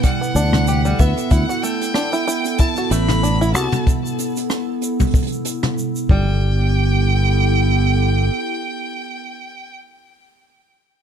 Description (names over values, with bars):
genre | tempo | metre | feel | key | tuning
folktronica | 94 BPM | 4/4 | swing 56% on 16ths | G major | A4 = 440 Hz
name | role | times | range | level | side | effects
bright violin | melody | 0.0-9.7 s | E5 to B5 | -24 LUFS | right 1 dB | ping-pong delay
warbly tape-like pad | sustained chords | 0.0-9.7 s | B3 to A4 | -24 LUFS | right 2 dB | chorus, built-in reverb
open-back banjo | arpeggios | 0.0-6.7 s | G3 to G4 | -24 LUFS | equal | none
jazz brush drum kit | drums | 0.0-6.1 s | hi-hat, rim click, shaker, toms | -23 LUFS | right 3 dB | none
kick drum | drums | 0.0-6.2 s | none | -17 LUFS | equal | none
fingered electric bass | bass | 0.3-8.3 s | G1 to D2 | -17 LUFS | equal | none
room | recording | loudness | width
light reverb | none | -16 LUFS | side -8 dB against mid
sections
0.0-6.4 A section; 6.4-9.0 B section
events
none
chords
0.0 G; 1.3 Dsus2 (rootless); 6.1 G